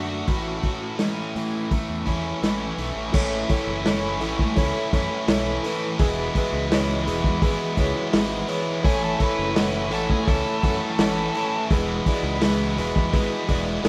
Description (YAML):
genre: classic rock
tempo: 84 BPM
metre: 4/4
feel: straight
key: unclear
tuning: A4 = 440 Hz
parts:
  - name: biting overdriven guitar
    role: second line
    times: 0.0-1.0, 8.9-11.7 s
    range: F#4 to B4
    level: -32 LUFS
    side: equal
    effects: spring reverb
  - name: distorted electric guitar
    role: riff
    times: 0.0-13.9 s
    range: A2 to F#4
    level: -31 LUFS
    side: equal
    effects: overdrive
  - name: distorted electric guitar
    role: riff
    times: 0.0-13.9 s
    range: E2 to E4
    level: -31 LUFS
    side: equal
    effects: overdrive
  - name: fuzz fingered electric bass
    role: bass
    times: 0.0-13.9 s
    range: E1 to A2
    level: -32 LUFS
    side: equal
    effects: overdrive
  - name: vintage drum kit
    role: drums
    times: 0.3-13.9 s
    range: crash cymbal, hi-hat, kick drum, snare drum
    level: -26 LUFS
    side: equal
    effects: none
  - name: reed electric piano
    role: accompaniment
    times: 3.1-13.9 s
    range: E4 to F#5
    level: -31 LUFS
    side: equal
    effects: fast tremolo
room: light reverb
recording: band playing live in one room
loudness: -23 LUFS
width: mono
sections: 0.0-3.1 A section; 3.1-13.9 B section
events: none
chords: 0.3 A; 6.0 E; 8.9 A; 11.7 E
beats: | 0.28 1.00 1.72 2.43 | 3.15 3.86 4.58 5.29 | 6.00 6.71 7.43 8.14 | 8.85 9.57 10.28 10.99 | 11.71 12.42 13.13 13.85